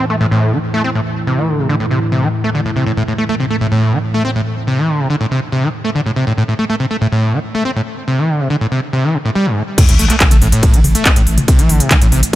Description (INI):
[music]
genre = driving peak-time techno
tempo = 141 BPM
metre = 4/4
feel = straight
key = A minor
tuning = A4 = 441 Hz
[part]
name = screaming distorted acid line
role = riff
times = 0.0-12.4 s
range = G2 to C4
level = -15 LUFS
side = equal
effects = distortion, analog chorus, sidechain pumping, tape echo
[part]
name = deep dark ambient pad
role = drone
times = 0.0-12.4 s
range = A2 to E3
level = -22 LUFS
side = equal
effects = chorus, built-in reverb, sidechain pumping
[part]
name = electronic kick drum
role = drums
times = 9.8-12.4 s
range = none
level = -12 LUFS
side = equal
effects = small room ambience
[part]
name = techno drum kit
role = drums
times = 9.8-12.4 s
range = crash cymbal, handclaps, hi-hat, ride cymbal, toms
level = -15 LUFS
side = equal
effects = small room ambience
[part]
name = sub drop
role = sound effects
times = 9.8-11.5 s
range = none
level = -21 LUFS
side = equal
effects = none
[part]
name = saturated sub bass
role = bass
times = 9.9-12.2 s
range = A1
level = -15 LUFS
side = equal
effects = overdrive, sidechain pumping, low-pass filter
[sound]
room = light reverb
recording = none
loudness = -12 LUFS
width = side -14 dB against mid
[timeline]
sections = 0.0-9.8 A section; 9.8-12.4 B section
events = drop 9.8-12.4; impact 9.8-11.5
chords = 0.0 A5